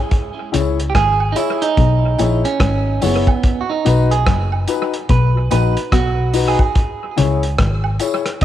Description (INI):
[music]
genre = roots reggae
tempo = 72 BPM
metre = 4/4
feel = swing 60% on 16ths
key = unclear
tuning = A4 = 440 Hz
[part]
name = cloth-damped thuddy drum kit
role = drums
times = 0.1-8.4 s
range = hi-hat, kick drum, rim click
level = -19 LUFS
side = equal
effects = cassette tape, analog delay
[part]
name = mellow electric guitar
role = riff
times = 0.5-8.4 s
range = F#2 to C#3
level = -22 LUFS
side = left 5 dB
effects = lush chorus, cassette tape
[part]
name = dark upright piano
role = stabs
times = 0.5-8.2 s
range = D#4 to C#5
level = -22 LUFS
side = left 8 dB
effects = cassette tape
[part]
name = vintage muted fingered electric bass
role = bass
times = 0.5-8.4 s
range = F#1 to C#2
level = -18 LUFS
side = equal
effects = none
[part]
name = tambourine and woodblock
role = percussion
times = 0.5-8.2 s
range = none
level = -30 LUFS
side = right 7 dB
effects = none
[part]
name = clean electric guitar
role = accompaniment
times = 0.9-8.4 s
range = B3 to B4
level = -20 LUFS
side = right 7 dB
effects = cassette tape, tape echo
[sound]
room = light reverb, studio ambience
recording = home recording on cassette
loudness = -14 LUFS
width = side -12 dB against mid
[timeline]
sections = 0.1-8.4 A section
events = clean electric guitar solo 0.1-8.4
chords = 0.1 C#m; 3.4 B; 6.8 C#m